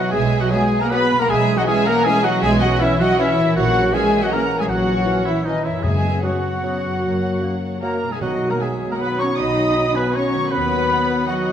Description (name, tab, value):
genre	classical, orchestral ballroom waltz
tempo	156 BPM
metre	3/4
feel	uneven beats, rubato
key	B major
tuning	A4 = 440 Hz
part	muted studio violin section	melody	0.0-11.5 s	D#5 to D#6	-26 LUFS	left 3 dB	none
part	muted studio violin section	second line	0.0-11.5 s	B4 to B5	-29 LUFS	left 2 dB	none
part	warm oboe	second line	0.0-11.5 s	D#4 to D#5	-28 LUFS	right 1 dB	none
part	muted studio viola section	accompaniment	0.0-11.4 s	D#4 to D#5	-27 LUFS	right 1 dB	none
part	mellow French horn section	sustained chords	0.0-11.5 s	D#3 to D#4	-27 LUFS	left 4 dB	none
part	warm trombone section	sustained chords	0.0-11.5 s	C#3 to C#4	-30 LUFS	right 3 dB	none
part	concert harp	arpeggios	0.0-11.5 s	F#2 to C#5	-30 LUFS	left 6 dB	none
part	dark trumpet	stabs	0.0-11.5 s	D#4 to D#5	-25 LUFS	right 2 dB	none
part	muted studio cello section	bass	0.0-11.5 s	D#3 to D#4	-25 LUFS	right 2 dB	none
part	silver concert flute	second line	0.1-11.3 s	D#5 to D#6	-27 LUFS	left 2 dB	none
part	muted studio double bass section	bass	0.1-10.8 s	A#1 to F#2	-26 LUFS	right 3 dB	none
part	clear clarinet	second line	0.5-11.5 s	A#3 to C#4	-32 LUFS	left 2 dB	none
part	mellow bassoon	accompaniment	0.5-11.5 s	E3 to F#3	-28 LUFS	right 1 dB	none
part	timpani	percussion	5.8-8.8 s	F#2 to B2	-26 LUFS	left 2 dB	none
room	wet recital hall reverb, RT60 1.6 s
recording	none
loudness	-16 LUFS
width	side -9 dB against mid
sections	0.0-11.5 A section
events	none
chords	0.0 B; 1.3 C#m7/B; 3.6 F#7/A#; 5.8 F#sus4; 7.0 F#; 8.2 B; 10.5 B/D#